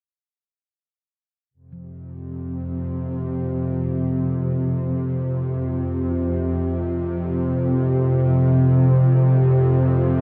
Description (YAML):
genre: dark ambient drone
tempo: free time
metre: none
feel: none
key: unclear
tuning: A4 = 438 Hz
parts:
  - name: sweeping resonant pad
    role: sustained chords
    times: 1.5-10.2 s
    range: C3 to F4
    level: -34 LUFS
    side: equal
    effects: none
  - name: bowed-like drone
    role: drone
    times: 1.9-10.2 s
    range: F2 to C3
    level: -21 LUFS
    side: equal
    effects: built-in reverb
  - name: quartz singing bowl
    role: arpeggios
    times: 1.7-10.2 s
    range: F3 to F4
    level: -39 LUFS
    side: equal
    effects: none
room: moderate huge ambient reverb, RT60 8.6 s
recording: none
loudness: -21 LUFS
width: mono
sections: 1.5-10.2 A section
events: none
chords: 1.5 F5